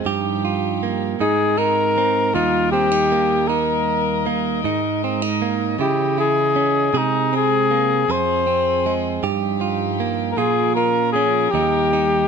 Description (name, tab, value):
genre	acoustic folk-pop ballad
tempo	52 BPM (dotted quarters)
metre	6/8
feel	straight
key	Ab major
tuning	A4 = 444 Hz
part	direct-recorded clean electric guitar	accompaniment	0.0-12.3 s	Eb2 to Ab4	-21 LUFS	right 8 dB	none
part	warm chamber string section	sustained chords	0.0-12.3 s	G2 to Eb5	-28 LUFS	left 5 dB	none
part	dark cor anglais	melody	1.2-12.3 s	Eb4 to C5	-18 LUFS	left 4 dB	none
room	moderate large studio reverb, RT60 1.3 s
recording	close, detailed microphones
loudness	-17 LUFS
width	side -6 dB against mid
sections	0.0-12.3 A section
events	none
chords	0.0 Ebadd9/G; 1.2 Abadd9; 2.3 Eb; 4.6 Absus2; 5.8 Dbmadd9; 6.9 Abadd9/C; 8.1 Fm; 9.2 Ebadd9/G; 10.4 Bbm; 11.5 Eb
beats	| 0.04 1.19 | 2.34 3.49 | 4.64 5.80 | 6.94 8.09 | 9.23 10.37 | 11.52